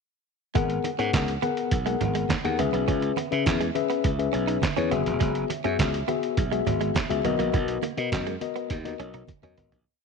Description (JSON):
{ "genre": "early-eighties boogie funk", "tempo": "103 BPM", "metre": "4/4", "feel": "straight", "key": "unclear", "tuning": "A4 = 440 Hz", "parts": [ { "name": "mellow tine electric piano", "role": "accompaniment", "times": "0.5-9.8 s", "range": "A#3 to F#5", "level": "-27 LUFS", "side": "left 10 dB", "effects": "none" }, { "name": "congas", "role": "percussion", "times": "0.5-9.7 s", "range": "none", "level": "-35 LUFS", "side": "right 15 dB", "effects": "none" }, { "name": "direct-recorded clean electric guitar", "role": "riff", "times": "0.6-9.7 s", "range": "G#3 to D#4", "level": "-34 LUFS", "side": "right 15 dB", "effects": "wide subtle chorus" }, { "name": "glassy slap bass", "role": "bass", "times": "0.6-9.8 s", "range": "E1 to C#3", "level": "-29 LUFS", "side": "right 3 dB", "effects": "none" }, { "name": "lo-fi sampler-style drum kit", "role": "drums", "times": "0.6-9.9 s", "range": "handclaps, hi-hat, kick drum, snare drum, toms", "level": "-28 LUFS", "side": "right 2 dB", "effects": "none" } ], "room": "light reverb, digital ambience", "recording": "1960s-style stereo with parts hard left and right, nothing above 10.3 kHz", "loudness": "-23 LUFS", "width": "side -5 dB against mid", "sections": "0.6-9.9 verse", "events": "fade-out 7.5-9.9; drum fill 8.7-9.9", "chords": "0.6 G#m9; 2.6 C#m7; 4.9 F#9sus4; 7.2 Bmaj7" }